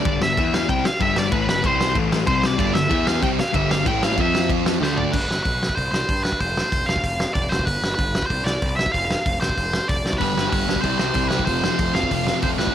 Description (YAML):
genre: punk rock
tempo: 189 BPM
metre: 4/4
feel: straight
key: G mixolydian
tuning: A4 = 436 Hz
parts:
  - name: nasal lead guitar with a parked wah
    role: melody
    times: 0.0-12.7 s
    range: B4 to G5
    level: -23 LUFS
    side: right 1 dB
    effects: overdrive, digital delay
  - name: sludgy distorted guitar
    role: riff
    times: 0.0-5.1, 10.2-12.7 s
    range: F2 to F4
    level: -25 LUFS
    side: left 14 dB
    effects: overdrive
  - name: sludgy distorted guitar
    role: riff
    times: 0.0-0.1, 2.6-5.1, 10.2-12.7 s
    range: F2 to G4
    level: -25 LUFS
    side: right 14 dB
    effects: overdrive
  - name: fuzz picked electric bass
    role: bass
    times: 0.1-12.7 s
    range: F1 to G2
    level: -27 LUFS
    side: equal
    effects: overdrive
  - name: loose indie drum kit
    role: drums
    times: 0.1-12.7 s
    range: crash cymbal, hi-hat, kick drum, snare drum, toms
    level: -23 LUFS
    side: equal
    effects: none
room: little or no reverb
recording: none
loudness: -18 LUFS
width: side -10 dB against mid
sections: 0.0-5.1 A section; 5.1-12.7 B section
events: drum fill 4.8-5.1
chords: 0.0 G5; 0.4 E5; 0.7 G5; 1.6 C5; 1.9 A5; 2.3 C5; 2.6 G5; 2.9 E5; 3.2 G5; 3.9 A5; 4.2 F5; 4.8 D5; 5.1 G; 5.8 C5; 6.4 F5; 7.7 G; 8.3 Cadd9; 8.9 F5; 10.2 G; 10.8 C; 11.5 F